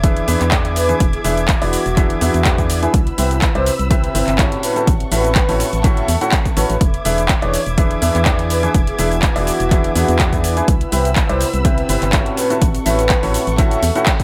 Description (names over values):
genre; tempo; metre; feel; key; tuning
piano house; 124 BPM; 4/4; swing 54% on 16ths; E mixolydian; A4 = 444 Hz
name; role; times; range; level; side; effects
muted studio violin section; sustained chords; 0.0-14.2 s; A4 to G#6; -30 LUFS; equal; sidechain pumping
clear upright piano; riff; 0.0-14.1 s; A2 to A5; -23 LUFS; equal; sidechain pumping
organ-like FM bass; bass; 0.0-13.9 s; E1 to E2; -22 LUFS; equal; sidechain pumping
electronic kick drum; drums; 0.0-14.2 s; none; -18 LUFS; equal; overdrive
garage drum kit; drums; 0.0-14.2 s; handclaps, hi-hat, shaker; -24 LUFS; equal; none
deep dark ambient pad; texture; 0.0-14.2 s; C4 to C#6; -30 LUFS; equal; chorus, built-in reverb, sidechain pumping
breathy flute-like synth lead; melody; 0.8-13.9 s; F#4 to E5; -25 LUFS; equal; chorus, dub echo
room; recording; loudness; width
little or no reverb; none; -16 LUFS; mono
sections
0.0-14.2 A section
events
band accent 14.1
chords
0.0 E7; 2.9 Cmaj7; 4.6 A6; 6.8 E7; 10.7 Cmaj7; 12.4 A6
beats
0.04 0.52 | 1.00 1.49 1.97 2.46 | 2.94 3.42 3.91 4.39 | 4.87 5.36 5.84 6.33 | 6.81 7.29 7.78 8.26 | 8.74 9.23 9.71 10.20 | 10.68 11.16 11.65 12.13 | 12.62 13.10 13.58 14.07